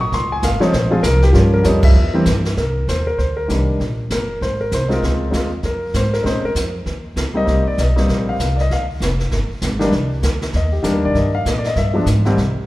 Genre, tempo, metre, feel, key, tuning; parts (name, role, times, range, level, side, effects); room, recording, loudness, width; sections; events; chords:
jazz piano trio; 196 BPM; 4/4; swing 61% on 8ths; C minor; A4 = 442 Hz
warm concert grand piano; melody; 0.0-12.4 s; C2 to Db6; -19 LUFS; left 1 dB
upright bass; bass; 0.0-12.6 s; F1 to Bb2; -19 LUFS; equal
jazz brush drum kit; drums; 0.1-12.7 s; brushed snare drum, crash cymbal, hi-hat, kick drum, snare drum; -22 LUFS; right 1 dB
moderate recital hall reverb, RT60 1.7 s; recorded in a church or concert hall; -15 LUFS; side -17 dB against mid
0.0-2.6 A section; 2.6-12.4 B section
band accent 1.8
0.1 Dbmaj7; 1.3 Gm7b5; 2.0 C (rootless); 2.6 Cm9; 3.8 F#; 4.4 Ab; 5.0 Dbmaj7; 6.2 Bbm11; 6.9 N.C.; 7.5 Eb69; 8.7 Dm; 9.3 G5; 9.9 Cm9; 11.8 G5